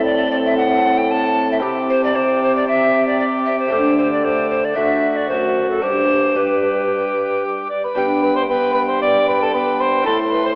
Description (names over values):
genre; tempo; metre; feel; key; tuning
classical, renaissance-style consort dance; 114 BPM; 4/4; straight; G major; A4 = 440 Hz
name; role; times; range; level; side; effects
mellow hollow tenor recorder; melody; 0.0-10.6 s; A4 to C6; -18 LUFS; equal; none
dark cor anglais; second line; 0.0-10.5 s; F#4 to D5; -20 LUFS; equal; none
lute; accompaniment; 0.0-10.6 s; F#2 to A4; -24 LUFS; equal; none
warm trombone; accompaniment; 0.0-10.6 s; G3 to E4; -25 LUFS; equal; none
mellow bassoon; bass; 0.0-10.6 s; F#2 to D3; -22 LUFS; equal; none
room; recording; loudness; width
wet church reverb, RT60 3.3 s; AM radio sound; -14 LUFS; side -34 dB against mid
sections
0.0-8.0 A section; 8.0-10.6 A section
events
none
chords
0.0 Am; 1.6 C; 3.7 Dsus4; 4.8 D; 5.8 G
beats
0.06 0.58 1.10 | 1.63 2.15 2.67 3.20 | 3.72 4.25 4.77 5.30 | 5.83 6.37 6.90 7.44 | 7.97 8.49 9.02 9.54 | 10.07